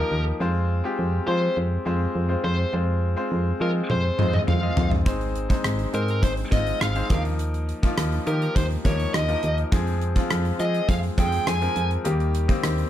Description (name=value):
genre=1980s-style pop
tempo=103 BPM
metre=4/4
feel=straight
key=unclear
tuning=A4 = 440 Hz
part: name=bluesy overdriven lead guitar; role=melody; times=0.0-11.9 s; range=Bb4 to Ab5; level=-27 LUFS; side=equal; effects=distortion, slapback echo
part: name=bright grand piano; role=accompaniment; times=0.0-12.9 s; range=Eb3 to Eb5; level=-28 LUFS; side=left 3 dB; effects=none
part: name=solid FM bass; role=bass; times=0.0-12.8 s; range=Ab1 to F3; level=-24 LUFS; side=equal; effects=none
part: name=gated 80s drum kit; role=drums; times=3.9-12.9 s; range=hi-hat, kick drum, rim click, toms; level=-24 LUFS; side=equal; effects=none
room=little or no reverb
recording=none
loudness=-21 LUFS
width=side -12 dB against mid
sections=0.0-12.9 A section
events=drum fill 3.9-5.1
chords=0.4 Fm; 5.1 Ab; 7.1 Ebsus2; 9.7 Fm; 12.1 Eb